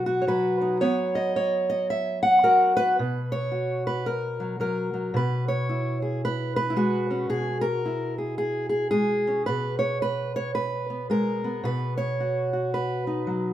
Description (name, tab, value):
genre	folk, solo fingerstyle acoustic guitar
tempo	111 BPM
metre	4/4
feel	swing 62% on 8ths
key	B major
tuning	A4 = 440 Hz
part	fingerpicked steel-string acoustic guitar	solo	0.0-13.5 s	B2 to F#5	-23 LUFS	equal	none
room	moderate large studio reverb, RT60 0.9 s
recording	minimal, uncompressed stereo recording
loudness	-23 LUFS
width	side -12 dB against mid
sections	0.0-13.5 A section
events	none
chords	0.0 B; 0.8 F#; 5.1 C#m/B; 9.5 G#madd9/B; 11.6 B